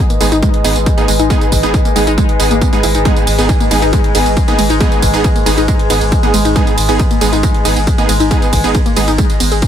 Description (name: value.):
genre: driving peak-time techno.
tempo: 137 BPM.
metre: 4/4.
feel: straight.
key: G# minor.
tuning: A4 = 440 Hz.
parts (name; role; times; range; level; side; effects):
overtone-sweeping drone; drone; 0.0-9.7 s; G#2 to G#3; -22 LUFS; equal; chorus, built-in reverb, sidechain pumping.
warbly tape-like pad; texture; 0.0-9.7 s; G#4 to G#5; -20 LUFS; left 1 dB; chorus, built-in reverb, sidechain pumping.
warbly dusty pluck; riff; 0.1-9.6 s; G#3 to G#4; -18 LUFS; left 2 dB; chorus, tube saturation, sidechain pumping, ping-pong delay.
techno drum kit; drums; 0.1-9.7 s; hi-hat, ride cymbal, tambourine; -20 LUFS; right 3 dB; overdrive, sidechain pumping on hats, studio reverb, sidechain pumping on cymbals, sidechain pumping on perc.
supersaw stab; stabs; 0.2-9.1 s; B3 to G#4; -18 LUFS; right 3 dB; sidechain pumping, tape echo.
saturated sub bass; bass; 0.2-9.6 s; G#1; -17 LUFS; equal; overdrive, sidechain pumping, low-pass filter.
electronic kick drum; drums; 0.4-9.7 s; none; -13 LUFS; equal; overdrive, studio reverb.
room: little or no reverb.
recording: none.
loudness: -10 LUFS.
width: side -9 dB against mid.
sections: 0.0-9.7 A section.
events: none.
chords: 0.0 G#m.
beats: 0.42 0.86 | 1.30 1.74 2.18 2.62 | 3.05 3.49 3.93 4.37 | 4.80 5.24 5.68 6.12 | 6.56 7.00 7.43 7.87 | 8.31 8.75 9.18 9.62.